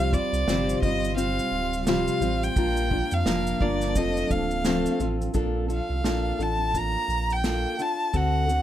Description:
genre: acoustic pop.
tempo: 86 BPM.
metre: 4/4.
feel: swing 60% on 16ths.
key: F major.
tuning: A4 = 440 Hz.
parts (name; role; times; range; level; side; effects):
rich violin; melody; 0.0-8.6 s; D5 to Bb5; -28 LUFS; right 1 dB; none.
fingerpicked plugged-in steel-string acoustic guitar; accompaniment; 0.0-8.6 s; Bb2 to C5; -27 LUFS; left 2 dB; none.
granular cloud pad; sustained chords; 0.0-5.3 s; C3 to A4; -36 LUFS; equal; built-in reverb.
sub bass with octave; bass; 0.0-8.6 s; D1 to F2; -28 LUFS; right 1 dB; none.
unplugged drum kit; drums; 0.1-8.6 s; kick drum, shaker, snare drum; -28 LUFS; right 1 dB; none.
room: little or no reverb.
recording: none.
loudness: -23 LUFS.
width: side -11 dB against mid.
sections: 0.0-5.4 A section; 5.4-8.6 B section.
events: none.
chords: 0.0 Csus4; 2.6 Bb; 4.0 F; 5.4 Bbmaj7.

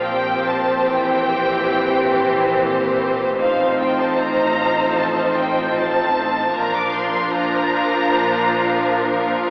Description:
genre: classical, slow romantic movement for string orchestra.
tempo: 69-78 BPM.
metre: 4/4.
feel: rubato.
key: Bb major.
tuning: A4 = 440 Hz.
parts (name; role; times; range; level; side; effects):
rich studio violin section; melody; 0.0-9.3 s; F5 to D6; -25 LUFS; equal; none.
clear studio violin section; second line; 0.0-9.5 s; Eb4 to C5; -23 LUFS; equal; none.
bright studio viola section; accompaniment; 0.0-9.5 s; E3 to D4; -24 LUFS; equal; none.
rich studio cello section; bass; 0.0-9.5 s; A2 to Bb2; -32 LUFS; equal; none.
rich studio double bass section; bass; 0.0-9.5 s; A1 to Bb1; -36 LUFS; equal; none.
room: wet concert hall reverb, RT60 2.4 s.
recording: heard from further back in the room, AM radio sound.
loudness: -19 LUFS.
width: mono.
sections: 0.0-9.5 A section.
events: none.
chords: 0.0 C7/Bb; 3.4 F7/A; 6.6 Bb.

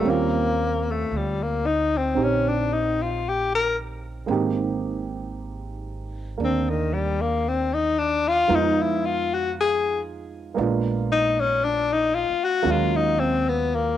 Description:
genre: jazz ballad.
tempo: 57 BPM.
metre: 4/4.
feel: swing 67% on 8ths.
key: unclear.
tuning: A4 = 440 Hz.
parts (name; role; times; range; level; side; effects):
breathy tenor saxophone; melody; 0.0-14.0 s; Eb3 to Bb4; -22 LUFS; left 4 dB; none.
dark baby grand piano; accompaniment; 0.0-14.0 s; F3 to G4; -27 LUFS; right 6 dB; cassette tape.
upright bass; bass; 0.1-14.0 s; Ab1 to F2; -29 LUFS; right 2 dB; none.
room: moderate spring reverb, RT60 1.3 s, small room ambience.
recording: home recording on cassette.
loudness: -21 LUFS.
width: side -11 dB against mid.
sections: 0.0-14.0 A section.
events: tenor saxophone solo 0.0-14.0.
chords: 0.1 Eb13; 4.3 Abmaj9; 8.5 Fm7b5; 10.6 Bb7b9; 12.6 Ebm11.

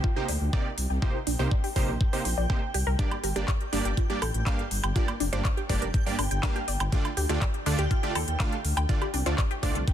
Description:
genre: progressive house.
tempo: 122 BPM.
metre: 4/4.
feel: straight.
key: G minor.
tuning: A4 = 440 Hz.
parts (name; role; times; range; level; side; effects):
glassy wavetable pluck; arpeggios; 0.0-9.8 s; D4 to G5; -34 LUFS; left 1 dB; chorus, sidechain pumping, ping-pong delay.
electronic kick drum; drums; 0.0-9.9 s; none; -27 LUFS; equal; none.
backwards swelling texture; texture; 0.0-9.9 s; G5; -40 LUFS; right 1 dB; built-in reverb, sidechain pumping.
supersaw stab; stabs; 0.2-9.8 s; G2 to F5; -32 LUFS; right 3 dB; cassette tape, sidechain pumping, ping-pong delay.
dark detuned saw bass; bass; 0.3-9.8 s; F1 to Eb2; -28 LUFS; equal; sidechain pumping.
pop drum kit; drums; 0.3-9.9 s; handclaps, hi-hat, toms, woodblock; -34 LUFS; right 1 dB; sidechain pumping on hats, sidechain pumping on perc, sidechain pumping on toms.
room: little or no reverb.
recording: dense, heavily limited modern master.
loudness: -25 LUFS.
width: side -10 dB against mid.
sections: 0.0-9.9 A section.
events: filter sweep on synth arpeggio sound 0.0-9.9.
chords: 0.0 Cm7; 3.0 Gm; 6.9 Dm.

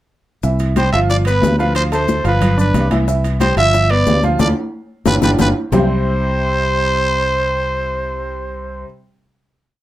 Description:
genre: latin, salsa.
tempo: 181 BPM.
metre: 4/4.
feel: straight.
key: C major.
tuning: A4 = 440 Hz.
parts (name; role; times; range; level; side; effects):
clear upright piano; accompaniment; 0.4-8.8 s; C3 to D6; -21 LUFS; right 1 dB; none.
fingered electric bass; bass; 0.4-8.8 s; G1 to D2; -18 LUFS; equal; none.
bongos; percussion; 0.4-5.8 s; none; -23 LUFS; left 6 dB; none.
congas; percussion; 0.4-5.8 s; none; -21 LUFS; left 1 dB; none.
maracas; percussion; 0.4-5.8 s; none; -36 LUFS; left 8 dB; none.
timbales; percussion; 0.6-5.8 s; none; -26 LUFS; right 2 dB; none.
growling trumpet; melody; 0.8-8.8 s; B4 to E5; -18 LUFS; right 1 dB; none.
room: moderate studio ambience, RT60 0.5 s.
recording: none.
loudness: -13 LUFS.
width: side -14 dB against mid.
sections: 0.4-5.7 montuno (vamp); 5.7-8.4 final chord.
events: band accent 4.4-5.7; drum fill 5.1-5.7.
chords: 0.4 C; 1.1 G7; 1.8 Dm7; 2.4 G7; 3.1 C; 3.7 G7; 4.4 Dm; 5.1 G7; 5.7 C.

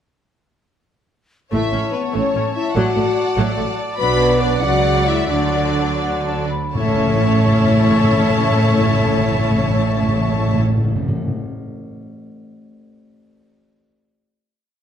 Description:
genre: cinematic, heroic adventure film score.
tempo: 77-98 BPM (dotted quarters).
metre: 6/8.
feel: straight.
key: A major.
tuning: A4 = 440 Hz.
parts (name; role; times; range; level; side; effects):
warm symphonic violin section; melody; 1.5-10.6 s; C#5 to D5; -26 LUFS; left 4 dB; none.
concert flute; second line; 1.5-10.6 s; E5 to B5; -27 LUFS; left 4 dB; none.
warm cor anglais; second line; 1.5-10.6 s; C#5 to D5; -28 LUFS; right 2 dB; none.
warm symphonic violin section; second line; 1.5-10.6 s; B4 to B5; -25 LUFS; left 3 dB; none.
rich symphonic viola section; accompaniment; 1.5-10.6 s; F#3 to D5; -24 LUFS; right 1 dB; none.
mellow French horn section; sustained chords; 1.5-10.6 s; A3 to B4; -21 LUFS; left 3 dB; none.
dark studio double bass section; bass; 1.5-10.6 s; A1 to D2; -23 LUFS; right 3 dB; none.
rich symphonic cello section; bass; 1.5-10.6 s; A2 to D3; -23 LUFS; right 4 dB; none.
timpani; percussion; 1.5-2.1, 6.8-11.3 s; A2; -21 LUFS; left 1 dB; none.
room: wet scoring stage reverb, RT60 1.6 s.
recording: none.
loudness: -15 LUFS.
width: side -9 dB against mid.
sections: 1.5-6.8 theme; 6.8-9.8 final chord.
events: slowing down 3.4-6.8.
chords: 1.5 A; 2.8 D/A; 4.0 Bm; 5.3 D; 6.8 A.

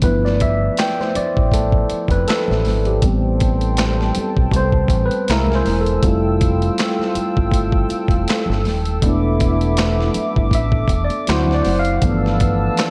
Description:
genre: R&B, neo-soul.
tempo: 80 BPM.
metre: 4/4.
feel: swing 56% on 16ths.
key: unclear.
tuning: A4 = 439 Hz.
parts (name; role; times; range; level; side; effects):
tine electric piano; accompaniment; 0.0-12.9 s; E3 to G5; -23 LUFS; equal; overdrive, lush chorus.
deep dub fingered electric bass; bass; 0.0-12.7 s; D#1 to D2; -22 LUFS; equal; none.
boom bap sampler-style drum kit; drums; 0.0-12.9 s; handclaps, hi-hat, kick drum, snare drum; -22 LUFS; equal; none.
congas; percussion; 0.0-12.9 s; none; -34 LUFS; equal; none.
hollow soft pad; sustained chords; 3.0-12.9 s; A4 to E6; -29 LUFS; equal; chorus.
muted trombone section; stabs; 3.0-12.9 s; E3 to F#4; -28 LUFS; equal; none.
room: little or no reverb.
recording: dark, warm production.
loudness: -18 LUFS.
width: mono.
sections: 0.0-12.9 A section.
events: tine electric piano solo 0.0-12.9.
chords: 0.0 G13; 3.0 Am9; 5.3 Caug7; 6.0 Fmaj9; 9.0 E7sus4; 11.3 D7; 12.0 G13.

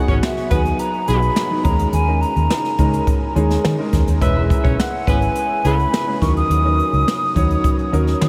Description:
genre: polished 1980s jazz-funk pop.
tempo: 105 BPM.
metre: 4/4.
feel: straight.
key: unclear.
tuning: A4 = 440 Hz.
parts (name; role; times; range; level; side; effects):
warm grand piano; accompaniment; 0.0-8.3 s; F#3 to C#5; -24 LUFS; equal; subtle chorus.
warm horn section; second line; 0.1-5.8 s; G#3 to E5; -32 LUFS; equal; delay.
vintage muted fingered electric bass; bass; 0.1-8.3 s; E1 to D#3; -21 LUFS; equal; none.
jazz brush drum kit; drums; 0.1-8.3 s; hi-hat, kick drum, snare drum; -23 LUFS; equal; none.
mellow hollow silver concert flute; melody; 0.2-8.0 s; E5 to D#6; -25 LUFS; equal; delay.
room: moderate huge ambient reverb, RT60 7.7 s.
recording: dreamy mix soaked in reverb.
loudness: -18 LUFS.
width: mono.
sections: 0.0-8.3 A section.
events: none.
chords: 0.0 G#m7; 1.6 D#7sus4; 4.2 E6; 6.2 D#m7.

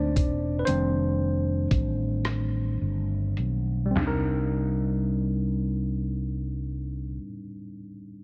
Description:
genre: slow six-eight R&B.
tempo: 34-40 BPM (dotted quarters).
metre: 6/8.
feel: straight.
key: C dorian.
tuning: A4 = 442 Hz.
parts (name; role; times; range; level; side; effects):
tine electric piano; accompaniment; 0.0-8.2 s; Eb3 to D5; -32 LUFS; equal; none.
fretless electric bass; bass; 0.0-7.2 s; E1 to D2; -30 LUFS; equal; none.
dusty soul sampler-style drum kit; drums; 0.2-4.2 s; crash cymbal, hi-hat, kick drum, rim click, snare drum, toms; -30 LUFS; equal; none.
room: light reverb.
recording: low-pass filter.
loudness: -27 LUFS.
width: mono.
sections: 0.0-4.0 A section; 4.0-7.5 B section.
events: slowing down 0.0-4.0; tine electric piano solo 0.0-4.0; filter sweep 0.0-4.0; break 2.2-4.0.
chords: 0.0 Cm9; 0.7 F13; 4.0 Cm9.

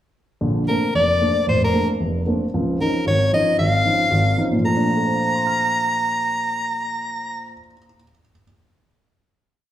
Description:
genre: jazz.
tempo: 227 BPM.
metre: 4/4.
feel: swing 60% on 8ths.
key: Bb major.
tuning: A4 = 438 Hz.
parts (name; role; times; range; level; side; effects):
dark baby grand piano; accompaniment; 0.4-8.4 s; F1 to F6; -20 LUFS; equal; none.
bright soprano saxophone; melody; 0.7-7.5 s; Bb4 to Bb5; -20 LUFS; left 1 dB; none.
room: wet large studio reverb, RT60 1.3 s.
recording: heard from further back in the room.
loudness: -17 LUFS.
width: side -12 dB against mid.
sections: 0.4-4.6 A section; 4.6-6.8 final chord.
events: none.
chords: 0.4 Bbmaj9; 2.5 Dbmaj9; 4.6 Bbmaj9.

